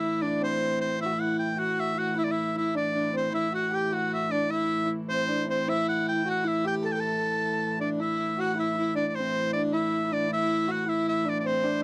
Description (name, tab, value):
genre	medieval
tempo	103 BPM (dotted quarters)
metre	6/8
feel	straight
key	A dorian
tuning	A4 = 440 Hz
part	bright shawm	melody	0.0-11.8 s	C5 to A5	-31 LUFS	equal	none
part	dark fiddle	second line	0.0-11.8 s	C4 to A4	-32 LUFS	equal	none
part	rich hurdy-gurdy	drone	0.0-11.8 s	A2 to E3	-35 LUFS	equal	none
room	light reverb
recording	dry, close 1970s-style studio recording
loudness	-28 LUFS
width	mono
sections	0.0-8.0 A section; 8.0-11.8 B section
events	none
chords	none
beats	0.41 | 1.00 1.59 | 2.17 2.76 | 3.35 3.93 | 4.51 5.09 | 5.68 6.26 | 6.84 7.42 | 8.00 8.57 | 9.15 9.72 | 10.30 10.87 | 11.45